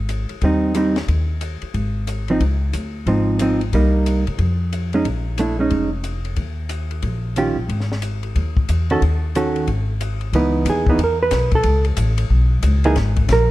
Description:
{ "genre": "jazz, small-group swing and bop", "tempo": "182 BPM", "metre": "4/4", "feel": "swing 63% on 8ths", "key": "Ab major", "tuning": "A4 = 439 Hz", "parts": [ { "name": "upright bass", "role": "bass", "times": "0.0-13.5 s", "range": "F1 to C3", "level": "-20 LUFS", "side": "equal", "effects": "none" }, { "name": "compact cocktail drum kit", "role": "drums", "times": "0.1-13.4 s", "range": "hi-hat, kick drum, ride cymbal, snare drum", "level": "-26 LUFS", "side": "left 2 dB", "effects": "none" }, { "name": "hollow-body jazz guitar", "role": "accompaniment", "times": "0.4-13.5 s", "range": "Eb3 to Cb5", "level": "-19 LUFS", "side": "right 2 dB", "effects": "none" } ], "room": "light reverb", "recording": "dark, warm production", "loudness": "-17 LUFS", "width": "side -16 dB against mid", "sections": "0.0-10.3 A section; 10.3-13.5 B section", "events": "none", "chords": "0.0 Abmaj7; 1.1 N.C.; 1.8 Ab; 2.4 Dbmaj9; 3.7 Cm7; 4.4 Fm7; 5.1 Bbm7; 6.4 Eb9; 7.7 Ab5; 9.0 Ebm7b5; 9.7 N.C.; 10.3 Dbm9; 11.7 A; 12.3 Badd9; 13.0 Absus2" }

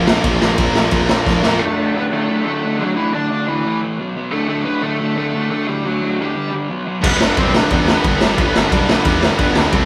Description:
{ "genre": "punk rock", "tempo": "177 BPM", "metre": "4/4", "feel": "straight", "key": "unclear", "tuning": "A4 = 440 Hz", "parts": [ { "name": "distorted electric guitar", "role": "riff", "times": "0.0-1.6, 7.0-9.9 s", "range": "G2 to C4", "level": "-24 LUFS", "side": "equal", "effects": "none" }, { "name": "raw garage guitar", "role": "riff", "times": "0.0-9.9 s", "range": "D2 to C4", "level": "-23 LUFS", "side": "equal", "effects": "overdrive" }, { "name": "scooped high-gain guitar", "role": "riff", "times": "0.0-1.6, 7.0-9.9 s", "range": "G2 to C4", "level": "-25 LUFS", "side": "equal", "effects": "distortion" }, { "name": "fuzz picked electric bass", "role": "bass", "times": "0.0-1.6, 7.0-9.8 s", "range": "G1 to E2", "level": "-25 LUFS", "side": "equal", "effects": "overdrive" }, { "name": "raw garage drum kit", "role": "drums", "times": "0.1-1.5, 7.0-9.8 s", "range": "crash cymbal, kick drum, ride cymbal, snare drum", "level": "-20 LUFS", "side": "equal", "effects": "none" }, { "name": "lead guitar through a small cranked amp", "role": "melody", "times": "1.6-9.9 s", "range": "E3 to D5", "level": "-24 LUFS", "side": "equal", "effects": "overdrive" } ], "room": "moderate stone room reverb, RT60 1.1 s", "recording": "band playing live in one room", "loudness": "-17 LUFS", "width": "mono", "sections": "0.0-1.6 A section; 1.6-9.9 B section", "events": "drum fill 1.3-1.6", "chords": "0.0 Bb5; 1.6 D5; 3.6 A5; 4.0 B5; 4.3 D; 6.4 G5; 6.7 B5; 7.0 G" }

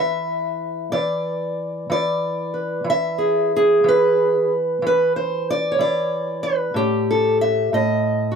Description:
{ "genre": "acoustic country blues, solo or duo", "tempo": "62 BPM (dotted quarters)", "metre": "12/8", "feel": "straight", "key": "unclear", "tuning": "A4 = 440 Hz", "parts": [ { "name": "fingerpicked steel-string acoustic guitar", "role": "solo", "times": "0.0-8.4 s", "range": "A2 to E5", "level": "-18 LUFS", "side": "equal", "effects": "none" } ], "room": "wet booth ambience, RT60 0.2 s", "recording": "none", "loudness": "-18 LUFS", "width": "side -6 dB against mid", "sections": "0.0-8.4 A section", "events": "none", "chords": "0.0 E7; 6.8 A5" }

